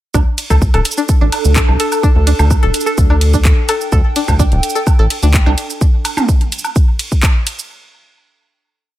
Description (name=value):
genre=minimal techno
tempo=127 BPM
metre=4/4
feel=straight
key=unclear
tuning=A4 = 440 Hz
part: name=string-like resonator pluck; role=riff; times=0.1-5.5 s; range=D4 to A4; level=-20 LUFS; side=left 1 dB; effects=chorus, sidechain pumping, digital delay
part: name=rubbery square bass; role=bass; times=0.1-5.5 s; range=D1 to D2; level=-12 LUFS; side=equal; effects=sidechain pumping
part: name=electronic kick drum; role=drums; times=0.1-7.3 s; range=none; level=-12 LUFS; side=equal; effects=none
part: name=house drum kit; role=drums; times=0.1-7.7 s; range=handclaps, hi-hat, ride cymbal, shaker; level=-21 LUFS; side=right 1 dB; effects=none
part: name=electronic woodblock and toms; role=percussion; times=0.1-7.3 s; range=none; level=-21 LUFS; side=right 3 dB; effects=digital delay
part: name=warbly tape-like pad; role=texture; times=0.9-5.8 s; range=D4 to A5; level=-22 LUFS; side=right 1 dB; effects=chorus, built-in reverb, phaser, sidechain pumping
room=digital ambience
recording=none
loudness=-11 LUFS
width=side -14 dB against mid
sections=0.1-7.7 drop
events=drop 0.1-7.7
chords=0.1 D5